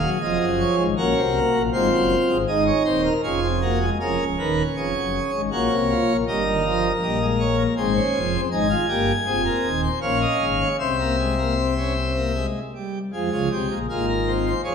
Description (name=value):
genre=classical, baroque-style 4-part fugue for pipe organ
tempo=79 BPM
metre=3/4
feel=straight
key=Db major, F minor from 8.5 s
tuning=A4 = 440 Hz
part: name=pipe organ, plenum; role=solo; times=0.0-14.7 s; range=Db1 to Ab5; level=-19 LUFS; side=equal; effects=none
room=wet recital hall reverb, RT60 1.9 s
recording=minimal, uncompressed stereo recording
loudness=-19 LUFS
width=side -6 dB against mid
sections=0.0-4.0 A section; 4.0-13.1 B section; 13.1-14.7 A section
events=none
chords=0.0 Db; 1.0 Gb/Bb; 1.7 Ab7; 3.2 Db/F; 4.0 Db7; 5.5 Gb/Bb; 6.3 Eb7/G; 7.8 Ab; 10.0 Bbm; 10.8 C; 13.1 Fm